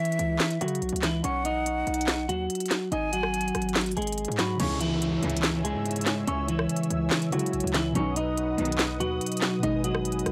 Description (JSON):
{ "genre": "hip hop, trap", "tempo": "143 BPM", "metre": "4/4", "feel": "half-time", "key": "C# minor", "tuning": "A4 = 441 Hz", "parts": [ { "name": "clean electric guitar", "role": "melody", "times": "0.0-10.3 s", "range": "E3 to D#5", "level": "-31 LUFS", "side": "equal", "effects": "low-pass filter" }, { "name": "concert flute", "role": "second line", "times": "0.0-4.6 s", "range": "E5 to B5", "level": "-34 LUFS", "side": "equal", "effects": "none" }, { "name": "trap drum kit", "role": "drums", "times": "0.1-10.3 s", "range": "crash cymbal, handclaps, hi-hat, rim click, snare drum", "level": "-32 LUFS", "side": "equal", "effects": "none" }, { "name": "distorted 808-style bass", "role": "bass", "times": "0.2-10.3 s", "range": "G#1 to C#3", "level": "-36 LUFS", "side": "equal", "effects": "distortion" }, { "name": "muted felt-like synth keys", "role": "accompaniment", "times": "4.6-10.3 s", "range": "B2 to E4", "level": "-35 LUFS", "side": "equal", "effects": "chorus, low-pass filter" }, { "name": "warm analog pad", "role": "sustained chords", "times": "4.6-10.3 s", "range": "B4 to E6", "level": "-40 LUFS", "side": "equal", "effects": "chorus" }, { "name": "warm symphonic string section", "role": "stabs", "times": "4.6-9.0 s", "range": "E2 to E3", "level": "-37 LUFS", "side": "equal", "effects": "none" }, { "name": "downlifter", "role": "sound effects", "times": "4.6-8.0 s", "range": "none", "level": "-42 LUFS", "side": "equal", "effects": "none" } ], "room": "little or no reverb", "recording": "dry, gritty hardware recording", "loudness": "-27 LUFS", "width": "mono", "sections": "0.0-4.6 A section; 4.6-10.3 B section", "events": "none", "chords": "0.0 C#m; 1.2 B; 2.9 G#5; 4.6 C#m; 8.0 B; 9.6 G#m", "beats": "0.40 0.82 | 1.24 1.66 2.08 2.50 | 2.92 3.34 3.76 4.18 | 4.60 5.02 5.44 5.86 | 6.28 6.70 7.11 7.53 | 7.95 8.37 8.79 9.21 | 9.63 10.05" }